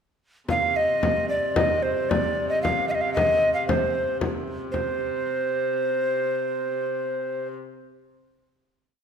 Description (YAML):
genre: medieval dance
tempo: 110-124 BPM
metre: 2/4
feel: straight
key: C minor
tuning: A4 = 441 Hz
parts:
  - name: mellow hollow tenor recorder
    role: melody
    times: 0.5-7.5 s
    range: C5 to F5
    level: -23 LUFS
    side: right 1 dB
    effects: none
  - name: rich hurdy-gurdy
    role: drone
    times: 0.5-7.5 s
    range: C3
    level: -33 LUFS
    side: equal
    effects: none
  - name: frame drum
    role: percussion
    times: 0.5-5.0 s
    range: none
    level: -27 LUFS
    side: left 3 dB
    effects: none
room: wet recital hall reverb, RT60 1.5 s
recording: minimal, uncompressed stereo recording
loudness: -22 LUFS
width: side -6 dB against mid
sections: 0.5-4.7 A section; 4.7-6.7 final note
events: speeding up 0.5-6.7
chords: none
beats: | 0.48 1.02 | 1.57 2.11 | 2.64 3.17 | 3.70 4.22 | 4.74 5.24 | 5.74 6.24